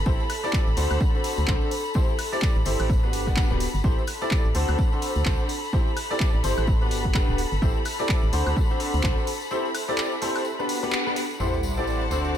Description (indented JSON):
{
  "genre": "piano house",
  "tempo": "127 BPM",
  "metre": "4/4",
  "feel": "swing 58% on 16ths",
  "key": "A dorian",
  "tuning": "A4 = 439 Hz",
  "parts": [
    { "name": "rich chamber violin section", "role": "sustained chords", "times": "0.0-12.4 s", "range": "E4 to B5", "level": "-32 LUFS", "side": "equal", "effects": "sidechain pumping" },
    { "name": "organ-like FM bass", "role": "bass", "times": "0.0-12.4 s", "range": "D1 to D2", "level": "-26 LUFS", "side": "equal", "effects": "tube saturation, sidechain pumping" },
    { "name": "clear grand piano", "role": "riff", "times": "0.1-12.3 s", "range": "B3 to D5", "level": "-28 LUFS", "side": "left 1 dB", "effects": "ensemble chorus, sidechain pumping, low-pass filter, ping-pong delay" },
    { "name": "electronic kick drum", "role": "drums", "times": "0.1-9.1 s", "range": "none", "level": "-23 LUFS", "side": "equal", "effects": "none" },
    { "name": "tambourine", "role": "percussion", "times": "0.1-12.4 s", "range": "none", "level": "-40 LUFS", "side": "left 7 dB", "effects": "none" },
    { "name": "punchy analog drum machine", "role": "drums", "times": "0.3-11.3 s", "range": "handclaps, hi-hat, woodblock", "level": "-32 LUFS", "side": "equal", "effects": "low-pass filter on snare, low-pass filter on cymbals, low-pass filter on hats, low-pass filter on perc, low-pass filter on room" },
    { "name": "sub drop", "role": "sound effects", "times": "11.4-12.4 s", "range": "none", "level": "-31 LUFS", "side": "equal", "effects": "none" },
    { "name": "clear studio string section", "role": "texture", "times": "11.4-12.4 s", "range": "G3 to A5", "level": "-33 LUFS", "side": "left 2 dB", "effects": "sidechain pumping" }
  ],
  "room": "light reverb, small room ambience",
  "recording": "none",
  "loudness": "-22 LUFS",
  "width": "side -10 dB against mid",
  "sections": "0.0-11.4 A section",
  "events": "break 9.5-11.4; band accent 10.9; impact 11.4-12.4",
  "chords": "0.1 Am7; 0.8 D7; 1.7 Am7; 2.9 Gmaj7; 3.8 Am7; 4.5 D7; 5.5 Am7; 6.7 Gmaj7; 7.6 Am7; 8.3 D7; 9.3 Am7; 10.5 Gmaj7; 11.4 Am7"
}